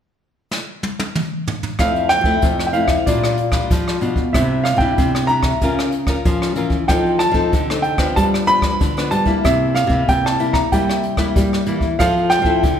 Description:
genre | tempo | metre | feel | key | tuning
samba and choro | 94 BPM | 4/4 | straight | F major | A4 = 440 Hz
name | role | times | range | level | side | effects
jazz brush drum kit | drums | 0.5-12.8 s | hi-hat, kick drum, rim click, snare drum, toms | -21 LUFS | equal | none
warm grand piano | melody | 1.8-12.8 s | D5 to B5 | -19 LUFS | right 2 dB | none
nylon-string guitar | accompaniment | 1.8-12.8 s | G2 to Bb4 | -21 LUFS | left 4 dB | none
nylon-string guitar | bass | 1.8-12.8 s | F2 to G3 | -21 LUFS | equal | none
room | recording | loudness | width
moderate recital hall reverb, RT60 1.5 s | recorded in a church or concert hall | -15 LUFS | side -8 dB against mid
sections
0.0-1.8 A section; 1.8-12.8 B section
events
drum fill 0.5-1.8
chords
0.0 N.C.; 1.8 Fmaj7; 3.1 Bb6; 4.3 Cadd9; 5.6 Bbm/Db; 6.9 F7; 8.2 G7; 9.4 C7; 12.0 Fmaj7

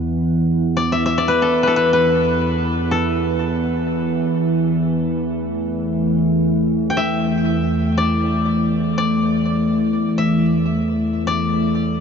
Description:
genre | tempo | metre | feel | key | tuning
world meditative, free-time meditation music | free time | none | none | E minor pentatonic | A4 = 440 Hz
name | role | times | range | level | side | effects
deep dark ambient pad | drone | 0.0-12.0 s | E2 to E3 | -20 LUFS | right 2 dB | chorus, built-in reverb
glass harmonica | texture | 0.0-12.0 s | A3 to B3 | -22 LUFS | left 2 dB | none
koto | melody | 0.8-12.0 s | A4 to G5 | -21 LUFS | left 2 dB | tape echo
room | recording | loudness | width
wet huge ambient reverb, RT60 8.0 s | dark, warm production, nothing above 7.5 kHz | -16 LUFS | side -6 dB against mid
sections
0.0-12.0 A section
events
none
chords
none

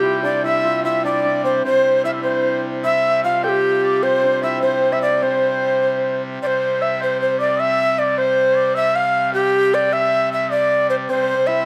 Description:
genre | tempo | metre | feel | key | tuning
medieval dance | 101 BPM (dotted quarters) | 6/8 | straight | C major | A4 = 440 Hz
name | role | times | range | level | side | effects
breathy bass recorder | melody | 0.0-11.7 s | G4 to F5 | -19 LUFS | equal | none
clear shawm | second line | 0.0-11.4 s | C5 to G5 | -27 LUFS | equal | none
hammered dulcimer | second line | 0.0-11.7 s | C4 to G4 | -29 LUFS | equal | none
pipe organ, trumpet | drone | 0.0-11.7 s | C3 to G3 | -31 LUFS | equal | none
room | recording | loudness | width
moderate recital hall reverb, RT60 1.7 s | none | -18 LUFS | mono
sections
0.0-6.4 A section; 6.4-11.7 A section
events
speeding up 0.0-11.7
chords
none

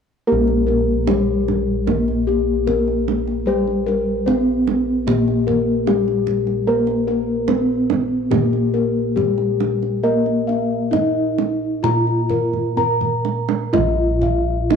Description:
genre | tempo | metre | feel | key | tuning
Javanese gamelan | 62-75 BPM | 4/4 | straight | Bb pelog barang | A4 = 440 Hz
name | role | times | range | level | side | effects
gamelan-type bronze metallophone | melody | 0.3-14.8 s | G3+20c to Bb4 | -20 LUFS | equal | none
gamelan-type bossed gongs | arpeggios | 0.3-14.8 s | G4+20c to Bb5 | -22 LUFS | left 8 dB | none
gamelan-type bossed gongs | bass | 0.3-14.8 s | Bb1 to Bb4 | -22 LUFS | right 2 dB | none
kendang | percussion | 0.5-14.8 s | none | -25 LUFS | right 12 dB | none
room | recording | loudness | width
moderate echo chamber reverb, RT60 1.8 s, studio reverb | 1960s-style stereo with parts hard left and right | -16 LUFS | side -6 dB against mid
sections
0.3-13.7 A section; 13.7-14.8 B section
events
drum fill 12.5-13.7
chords
none

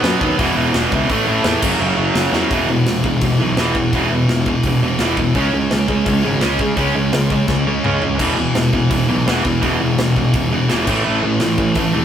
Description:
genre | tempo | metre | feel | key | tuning
punk rock | 169 BPM | 4/4 | straight | E major | A4 = 440 Hz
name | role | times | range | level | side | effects
distorted electric guitar | riff | 0.0-12.0 s | E2 to C#4 | -23 LUFS | left 5 dB | none
high-gain distorted guitar | riff | 0.0-12.0 s | E2 to C#4 | -21 LUFS | left 1 dB | distortion
tight distorted guitar | riff | 0.0-12.0 s | E2 to C#4 | -19 LUFS | right 4 dB | distortion
fuzz picked electric bass | bass | 0.0-12.0 s | E1 to C#3 | -21 LUFS | equal | overdrive
tight metal drum kit | drums | 0.0-11.8 s | crash cymbal, hi-hat, kick drum, snare drum, toms | -23 LUFS | left 1 dB | none
room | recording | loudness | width
moderate stone room reverb, RT60 1.0 s | rough rehearsal-room recording | -14 LUFS | side -9 dB against mid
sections
0.0-2.5 A section; 2.5-12.0 B section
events
drum fill 2.3, 7.5-8.2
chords
0.4 E5; 1.1 A5; 1.6 F#5; 2.5 E5; 5.4 C#5; 8.2 E5; 10.9 A5

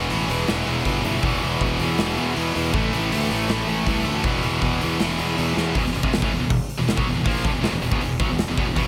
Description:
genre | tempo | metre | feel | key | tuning
heavy metal | 159 BPM | 4/4 | straight | unclear | A4 = 440 Hz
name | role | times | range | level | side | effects
distorted electric guitar | riff | 0.0-5.7, 8.8-8.9 s | E2 to A3 | -29 LUFS | equal | overdrive
heavy high-gain guitar | riff | 0.0-8.9 s | E2 to A#3 | -28 LUFS | equal | distortion
scooped high-gain guitar | riff | 0.0-8.9 s | E2 to A#3 | -29 LUFS | equal | distortion
fuzz fingered electric bass | bass | 0.0-8.9 s | E1 to E2 | -30 LUFS | equal | overdrive
big rock drum kit | drums | 0.1-8.9 s | hi-hat, kick drum, snare drum | -28 LUFS | equal | none
room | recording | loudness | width
light reverb | none | -22 LUFS | mono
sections
0.0-5.8 A section; 5.8-8.9 B section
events
half time 0.0-5.8; drum fill 5.6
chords
0.0 Em; 2.7 A5; 4.2 E5

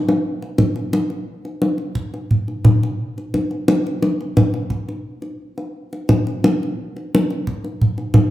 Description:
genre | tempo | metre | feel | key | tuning
gamelan | 87 BPM | 4/4 | straight | none | none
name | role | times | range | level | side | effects
kendang | percussion | 0.1-8.3 s | none | -17 LUFS | equal | none
room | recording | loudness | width
wet recital hall reverb, RT60 1.4 s | none | -17 LUFS | side -14 dB against mid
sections
0.2-8.3 A section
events
drum fill 0.0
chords
none

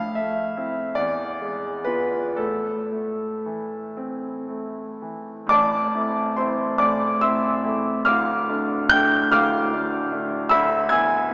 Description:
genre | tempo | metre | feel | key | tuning
classical, romantic nocturne for solo piano | 37-52 BPM (dotted quarters) | 12/8 | rubato | A minor | A4 = 437 Hz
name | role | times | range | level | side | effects
clear concert grand piano | solo | 0.0-11.3 s | D1 to G#6 | -20 LUFS | equal | none
room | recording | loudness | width
wet church reverb, RT60 3.0 s | small speaker sound | -20 LUFS | side -28 dB against mid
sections
0.0-5.5 A section; 5.5-11.3 A section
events
none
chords
0.0 Am; 1.0 E7b9; 2.4 Am; 8.1 Dm; 10.5 E7/D

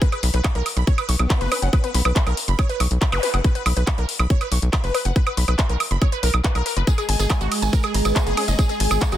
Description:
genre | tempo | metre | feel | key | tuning
psychedelic trance | 140 BPM | 4/4 | straight | unclear | A4 = 442 Hz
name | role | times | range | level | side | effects
wide unison pluck | riff | 0.0-9.2 s | F#4 to C#6 | -27 LUFS | moving between left 4 dB and right 7 dB | auto-pan, sidechain pumping, ping-pong delay
drum and bass drum kit | drums | 0.0-9.2 s | handclaps, hi-hat, ride cymbal, woodblock | -25 LUFS | right 1 dB | none
electronic kick drum | drums | 0.0-9.1 s | none | -19 LUFS | equal | none
tight sequencer bass | bass | 0.2-9.2 s | F#1 to B1 | -20 LUFS | equal | none
formant-sweep wobble bass | second line | 1.2-2.0, 8.1-8.5 s | B3 to C#4 | -33 LUFS | left 2 dB | lush chorus, cassette tape, sidechain pumping, high-pass filter, tape echo
zap | sound effects | 3.1-3.2 s | none | -31 LUFS | equal | none
evolving wavetable pad | sustained chords | 7.1-9.2 s | G#3 to G#4 | -26 LUFS | right 2 dB | phaser, built-in reverb, sidechain pumping
tambourine | percussion | 6.9-9.2 s | none | -33 LUFS | right 6 dB | none
room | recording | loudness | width
digital ambience | dense, heavily limited modern master | -18 LUFS | side -12 dB against mid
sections
0.0-9.2 A section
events
none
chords
0.0 B5; 6.9 G#5

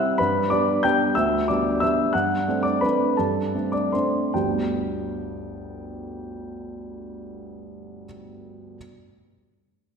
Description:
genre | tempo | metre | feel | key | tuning
classical, piano waltz | 135-193 BPM | 3/4 | rubato | G major | A4 = 438 Hz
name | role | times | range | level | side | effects
clear upright piano | solo | 0.0-8.8 s | G1 to G6 | -22 LUFS | equal | none
room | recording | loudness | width
wet recital hall reverb, RT60 1.6 s | none | -20 LUFS | side -6 dB against mid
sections
0.0-4.4 A section; 4.4-6.6 B section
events
slowing down 1.7-4.4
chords
0.2 G; 2.1 D7/G; 4.4 G

